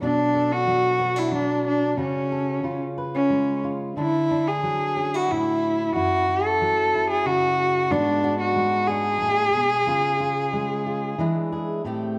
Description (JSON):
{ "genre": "folk", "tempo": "92 BPM", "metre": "3/4", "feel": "straight", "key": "F# minor", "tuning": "A4 = 440 Hz", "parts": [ { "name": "warm cello", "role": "melody", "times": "0.0-11.2 s", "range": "C#4 to A4", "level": "-24 LUFS", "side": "equal", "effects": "none" }, { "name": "fingerpicked steel-string acoustic guitar", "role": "accompaniment", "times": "0.0-12.2 s", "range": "F#2 to B4", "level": "-29 LUFS", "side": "equal", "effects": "none" } ], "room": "moderate recital hall reverb, RT60 1.7 s", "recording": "none", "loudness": "-23 LUFS", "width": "mono", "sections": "0.0-11.8 A section", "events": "none", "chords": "0.0 Bm7; 2.0 F#m/C#; 2.6 C#7; 4.0 Dadd9; 6.0 F#m7; 7.9 G#m7b5; 9.9 C#; 11.2 E7", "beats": "| 0.03 0.69 1.34 | 1.99 2.64 3.31 | 3.97 4.64 5.29 | 5.95 6.61 7.26 | 7.91 8.56 9.21 | 9.87 10.53 11.19 | 11.85" }